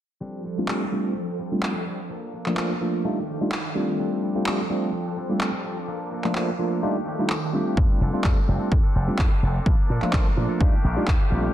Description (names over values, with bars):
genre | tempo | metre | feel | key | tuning
filtered disco house | 127 BPM | 4/4 | swing 53% on 16ths | F mixolydian | A4 = 441 Hz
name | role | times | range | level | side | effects
phased string machine | sustained chords | 0.2-11.5 s | Eb3 to D6 | -33 LUFS | right 1 dB | ensemble chorus, phaser, sidechain pumping, low-pass filter
twangy electric guitar | riff | 0.2-11.5 s | F3 to A4 | -36 LUFS | left 1 dB | sidechain pumping, low-pass filter
bell-like tine electric piano | accompaniment | 0.6-11.5 s | F3 to F4 | -25 LUFS | equal | phaser, sidechain pumping, low-pass filter
electronic handclaps | drums | 0.7-11.2 s | none | -30 LUFS | equal | none
slap bass with an envelope filter | bass | 7.8-11.5 s | F1 to Bb2 | -24 LUFS | equal | sidechain pumping, low-pass filter
electronic kick drum | drums | 7.8-11.2 s | none | -20 LUFS | equal | none
room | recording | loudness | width
light reverb, digital ambience | dense, heavily limited modern master | -21 LUFS | side -12 dB against mid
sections
0.2-11.5 A section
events
filter sweep 0.2-11.5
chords
0.2 F69; 2.1 Bbmaj7; 3.0 Ebmaj9#11; 4.0 F69; 5.9 Bbmaj7; 6.8 Ebmaj9#11; 7.8 F69; 9.7 Bbmaj7; 10.6 Ebmaj9#11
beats
| 0.21 0.69 1.16 1.63 | 2.10 2.58 3.05 3.52 | 3.99 4.47 4.94 5.41 | 5.88 6.36 6.83 7.30 | 7.77 8.24 8.72 9.19 | 9.66 10.13 10.61 11.08